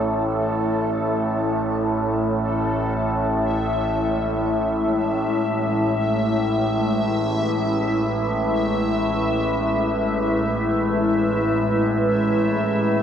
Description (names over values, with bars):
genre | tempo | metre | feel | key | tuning
dark ambient drone | free time | none | none | unclear | A4 = 440 Hz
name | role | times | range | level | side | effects
deep dark ambient pad | sustained chords | 0.0-13.0 s | A2 to E5 | -21 LUFS | left 1 dB | chorus, built-in reverb, shimmer reverb
overtone-sweeping drone | drone | 0.0-13.0 s | A1 to A2 | -24 LUFS | right 1 dB | chorus, built-in reverb
bubbling stepped-filter texture | texture | 0.0-13.0 s | A4 to E5 | -31 LUFS | left 1 dB | chorus, built-in reverb, shimmer reverb
room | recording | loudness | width
wet huge ambient reverb, RT60 8.3 s | cassette tape | -19 LUFS | side -8 dB against mid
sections
0.0-13.0 A section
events
none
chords
0.0 A; 2.9 E/A